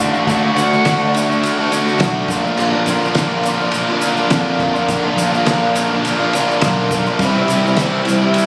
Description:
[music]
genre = folk rock and heartland rock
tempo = 104 BPM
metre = 4/4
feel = straight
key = unclear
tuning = A4 = 440 Hz
[part]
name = overdriven slide guitar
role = second line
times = 0.0-1.1 s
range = D5 to F#5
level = -22 LUFS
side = equal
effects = slapback echo
[part]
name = picked twelve-string acoustic guitar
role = accompaniment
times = 0.0-8.5 s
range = Bb2 to F#4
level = -23 LUFS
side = equal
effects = none
[part]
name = biting overdriven guitar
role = riff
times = 0.0-8.5 s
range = Bb2 to F#4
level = -19 LUFS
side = equal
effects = none
[part]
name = picked electric bass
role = bass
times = 0.0-8.4 s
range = A1 to F2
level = -23 LUFS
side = equal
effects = none
[part]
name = tube shaker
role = percussion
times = 0.0-8.5 s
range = none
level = -34 LUFS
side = equal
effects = none
[part]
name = cloth-damped thuddy drum kit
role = drums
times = 0.3-8.5 s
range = crash cymbal, kick drum, ride cymbal, snare drum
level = -25 LUFS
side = equal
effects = none
[sound]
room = light reverb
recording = recorded on a phone in the room, studio reverb, compression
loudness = -16 LUFS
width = mono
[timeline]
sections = 0.0-8.5 A section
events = none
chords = 0.0 D; 2.3 Bb; 7.2 C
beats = | 0.29 0.86 1.44 2.01 | 2.59 3.16 3.74 4.32 | 4.89 5.47 6.05 6.62 | 7.20 7.78 8.35

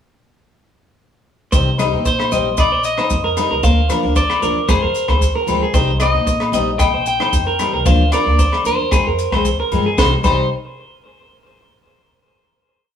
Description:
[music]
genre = highlife guitar band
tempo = 114 BPM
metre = 4/4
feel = straight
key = C minor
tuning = A4 = 440 Hz
[part]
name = picked plugged-in swing-style acoustic guitar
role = accompaniment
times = 1.5-10.5 s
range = F3 to Eb4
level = -22 LUFS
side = left 4 dB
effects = none
[part]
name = clean electric guitar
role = arpeggios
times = 1.5-10.5 s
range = Ab4 to Eb5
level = -20 LUFS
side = right 2 dB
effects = tape echo
[part]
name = upright bass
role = bass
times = 1.5-10.5 s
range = Bb1 to Bb2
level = -20 LUFS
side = equal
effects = none
[part]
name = compact cocktail drum kit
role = drums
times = 1.5-10.4 s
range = crash cymbal, hi-hat, kick drum, rim click, snare drum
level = -19 LUFS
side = right 1 dB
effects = none
[part]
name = maracas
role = percussion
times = 1.5-10.5 s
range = none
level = -32 LUFS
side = left 4 dB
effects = none
[part]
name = agogo bells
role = percussion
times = 1.8-10.4 s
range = none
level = -24 LUFS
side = left 9 dB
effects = none
[part]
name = electric guitar at the edge of break-up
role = melody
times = 2.1-10.5 s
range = C5 to G5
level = -20 LUFS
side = left 1 dB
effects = none
[sound]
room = moderate studio reverb, RT60 0.8 s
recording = band playing live in one room, small room ambience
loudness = -14 LUFS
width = side -8 dB against mid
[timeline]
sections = 1.5-10.0 groove; 10.0-12.1 final chord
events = none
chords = 1.5 Cm; 3.6 Bb/D; 4.7 Fm; 5.7 Cm; 7.9 Bb/D; 8.9 Fm; 10.0 Cm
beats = | 1.52 2.05 2.58 3.10 | 3.63 4.16 4.69 5.21 | 5.74 6.27 6.80 7.33 | 7.86 8.38 8.91 9.44 | 9.97

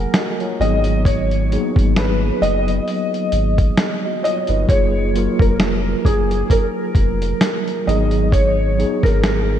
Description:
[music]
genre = lo-fi hip hop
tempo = 66 BPM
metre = 4/4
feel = swing 56% on 16ths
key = unclear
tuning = A4 = 440 Hz
[part]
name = felt-muted upright piano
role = melody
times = 0.0-9.6 s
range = G#4 to D#5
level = -22 LUFS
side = equal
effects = analog chorus, tape echo
[part]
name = mellow tine electric piano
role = accompaniment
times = 0.0-9.6 s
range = F#3 to G#5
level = -22 LUFS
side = right 1 dB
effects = medium stereo tremolo
[part]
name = warm sub bass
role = bass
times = 0.0-9.6 s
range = E#1 to G#1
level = -20 LUFS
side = equal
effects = none
[part]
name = dusty soul sampler-style drum kit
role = drums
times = 0.1-9.5 s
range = hi-hat, kick drum, snare drum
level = -19 LUFS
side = equal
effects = none
[sound]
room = moderate lush hall reverb, RT60 2.7 s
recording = dreamy mix soaked in reverb, cassette tape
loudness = -15 LUFS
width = side -10 dB against mid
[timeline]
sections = 0.0-9.6 A section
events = none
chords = 0.0 F#maj9; 0.6 G#m7; 4.7 F#maj9; 7.9 G#m7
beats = 0.14 | 1.05 1.96 2.87 3.78 | 4.69 5.60 6.50 7.41 | 8.32 9.23

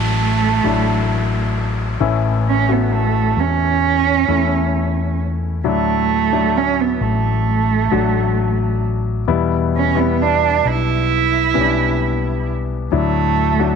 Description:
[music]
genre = pop ballad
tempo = 66 BPM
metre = 4/4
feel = straight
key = D major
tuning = A4 = 440 Hz
[part]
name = dark cello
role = melody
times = 0.0-13.8 s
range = A3 to E4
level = -18 LUFS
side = right 10 dB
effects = none
[part]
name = clear baby grand piano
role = accompaniment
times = 0.0-13.8 s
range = A2 to F#4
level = -22 LUFS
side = left 12 dB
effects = none
[part]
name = mellow fretless electric bass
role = bass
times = 0.0-13.8 s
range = A1 to E2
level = -20 LUFS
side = left 1 dB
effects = none
[part]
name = downlifter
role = sound effects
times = 0.0-5.6 s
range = none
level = -29 LUFS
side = left 1 dB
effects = none
[sound]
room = moderate spring reverb, RT60 2.2 s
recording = 1960s-style stereo with parts hard left and right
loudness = -15 LUFS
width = side -6 dB against mid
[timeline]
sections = 0.0-13.8 A section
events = none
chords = 0.0 Dadd9; 2.0 A; 5.6 Dadd9; 9.3 Em; 12.9 Dadd9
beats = 0.19 1.10 | 2.01 2.92 3.83 4.73 | 5.64 6.55 7.46 8.37 | 9.28 10.19 11.10 12.01 | 12.92

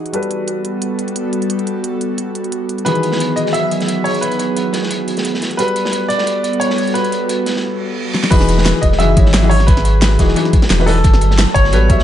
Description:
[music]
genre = liquid drum and bass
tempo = 176 BPM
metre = 4/4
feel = swing 53% on 16ths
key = unclear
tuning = A4 = 440 Hz
[part]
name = felt-muted upright piano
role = accompaniment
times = 0.0-12.0 s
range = D#3 to E5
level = -21 LUFS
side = left 3 dB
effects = low-pass filter, dub echo
[part]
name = airy breathy pad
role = sustained chords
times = 0.0-12.0 s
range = E3 to A4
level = -21 LUFS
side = right 1 dB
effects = chorus, sidechain pumping
[part]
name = pop drum kit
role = drums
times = 0.1-12.0 s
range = crash cymbal, hi-hat, snare drum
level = -21 LUFS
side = equal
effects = dub echo
[part]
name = bright baby grand piano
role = melody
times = 2.8-12.0 s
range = A4 to E5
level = -19 LUFS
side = equal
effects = dub echo
[part]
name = crunchy breakbeat drum kit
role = drums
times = 2.9-12.0 s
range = hi-hat, snare drum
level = -25 LUFS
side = right 1 dB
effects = high-pass filter on hats, high-pass filter on snare, high-pass filter on room
[part]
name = reverse cymbal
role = sound effects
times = 7.8-8.3 s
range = none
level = -25 LUFS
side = right 5 dB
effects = none
[part]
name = warm sub bass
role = bass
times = 8.3-12.0 s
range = E1 to B1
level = -14 LUFS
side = equal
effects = tube saturation
[part]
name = electronic kick drum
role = drums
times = 8.3-12.0 s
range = none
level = -12 LUFS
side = equal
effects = none
[sound]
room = light reverb, small room ambience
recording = echo-heavy mix, nothing above 10.6 kHz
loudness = -13 LUFS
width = side -11 dB against mid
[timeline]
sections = 0.0-8.3 A section; 8.3-12.0 B section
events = reverse cymbal 7.8-8.3; drum fill 8.1; drop 8.3-12.0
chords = 0.1 Gmaj9; 2.9 Emaj9; 5.6 Gmaj9; 8.3 Emaj9; 11.0 Gmaj9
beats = | 0.14 0.48 0.82 1.16 | 1.50 1.84 2.18 2.52 | 2.86 3.20 3.54 3.89 | 4.23 4.57 4.91 5.25 | 5.59 5.93 6.27 6.61 | 6.95 7.29 7.64 7.98 | 8.32 8.66 9.00 9.34 | 9.68 10.02 10.36 10.70 | 11.04 11.39 11.73

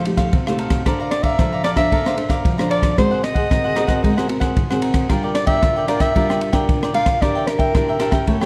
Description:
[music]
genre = samba and choro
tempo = 113 BPM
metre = 4/4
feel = straight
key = unclear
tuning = A4 = 440 Hz
[part]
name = dark soprano saxophone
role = melody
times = 0.0-8.5 s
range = Bb4 to F5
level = -23 LUFS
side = equal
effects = slapback echo
[part]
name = cavaquinho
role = accompaniment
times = 0.0-8.5 s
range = D4 to Bb5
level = -27 LUFS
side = equal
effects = none
[part]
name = nylon-string guitar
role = accompaniment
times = 0.0-8.5 s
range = C3 to C5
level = -24 LUFS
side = equal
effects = none
[part]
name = open jazz drum kit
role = drums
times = 0.1-8.5 s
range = kick drum, ride cymbal, rim click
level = -22 LUFS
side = equal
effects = none
[sound]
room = moderate large studio reverb, RT60 1.2 s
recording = none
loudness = -18 LUFS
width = mono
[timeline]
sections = 0.0-8.5 A section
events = none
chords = 0.0 F9; 0.9 Bbmaj9; 3.0 G#9; 5.1 Gm7; 7.2 Em7b5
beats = 0.33 | 0.86 1.39 1.92 2.45 | 2.98 3.51 4.04 4.57 | 5.10 5.63 6.16 6.69 | 7.22 7.75 8.28

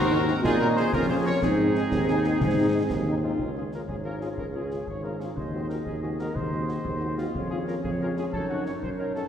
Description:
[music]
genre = military-style march for wind band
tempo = 122 BPM (dotted quarters)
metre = 6/8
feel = straight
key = Db major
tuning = A4 = 439 Hz
[part]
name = mellow trumpet section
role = melody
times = 0.0-9.3 s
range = F4 to Db5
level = -33 LUFS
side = right 1 dB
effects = none
[part]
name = flute section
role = second line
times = 0.0-3.2 s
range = Ab4 to Db5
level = -33 LUFS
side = left 2 dB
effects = none
[part]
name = warm woodwind section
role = second line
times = 0.0-9.3 s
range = Eb4 to Eb5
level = -33 LUFS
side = left 2 dB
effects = none
[part]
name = warm trombone section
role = sustained chords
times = 0.0-3.1 s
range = C4 to Eb4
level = -30 LUFS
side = right 2 dB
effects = none
[part]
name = clear tuba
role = bass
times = 0.0-9.2 s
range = Ab1 to Bb2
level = -28 LUFS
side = equal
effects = none
[part]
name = clear French horn section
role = accompaniment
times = 0.1-9.2 s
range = F3 to Gb4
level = -34 LUFS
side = left 2 dB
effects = none
[part]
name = concert snare drum and concert bass drum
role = drums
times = 0.1-9.3 s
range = none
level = -34 LUFS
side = equal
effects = none
[sound]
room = wet concert hall reverb, RT60 1.9 s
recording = heard from further back in the room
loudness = -24 LUFS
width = side -8 dB against mid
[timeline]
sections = 0.0-3.4 A section; 3.4-9.3 B section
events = none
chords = 0.4 Bbm; 1.4 Ab; 3.4 Db; 5.4 Ab7/Eb; 7.3 Db/F; 8.3 Gbm6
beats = | 0.43 0.93 | 1.42 1.91 | 2.40 2.90 | 3.39 3.88 | 4.38 4.87 | 5.37 5.86 | 6.35 6.85 | 7.34 7.84 | 8.33 8.82

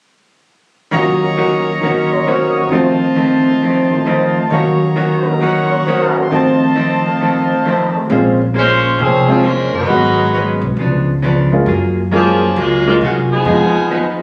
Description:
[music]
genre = jazz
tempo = 134 BPM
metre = 4/4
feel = swing 66% on 8ths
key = Bb minor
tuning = A4 = 440 Hz
[part]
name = vintage hollow-body jazz guitar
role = accompaniment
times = 0.9-14.2 s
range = F2 to C5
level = -20 LUFS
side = equal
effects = none
[part]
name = warm grand piano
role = accompaniment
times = 0.9-13.7 s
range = Eb2 to F5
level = -18 LUFS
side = equal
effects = none
[part]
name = clear trumpet section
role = stabs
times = 0.9-8.1 s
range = F4 to Eb6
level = -21 LUFS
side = equal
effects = none
[part]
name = upright bass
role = bass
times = 8.1-14.2 s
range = F1 to C3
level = -20 LUFS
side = equal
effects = none
[part]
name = mellow saxophone section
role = melody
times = 8.6-14.2 s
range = Db3 to C5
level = -17 LUFS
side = equal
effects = none
[sound]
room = wet large studio reverb, RT60 1.2 s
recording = recorded on a phone in the room, club reverb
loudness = -14 LUFS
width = mono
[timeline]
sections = 0.9-8.1 A section; 8.1-14.2 B section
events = none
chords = 0.9 Ebm7; 2.7 F7; 4.5 Ebm7; 6.3 F7; 8.1 Bbm9; 9.9 Abm11; 10.8 Db7b9; 11.7 Gbmaj9; 13.5 Fm7b5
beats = | 0.92 1.37 1.81 2.27 | 2.71 3.16 3.61 4.06 | 4.51 4.96 5.41 5.86 | 6.30 6.75 7.20 7.65 | 8.10 8.54 8.99 9.44 | 9.88 10.33 10.78 11.22 | 11.67 12.12 12.56 13.01 | 13.46 13.91

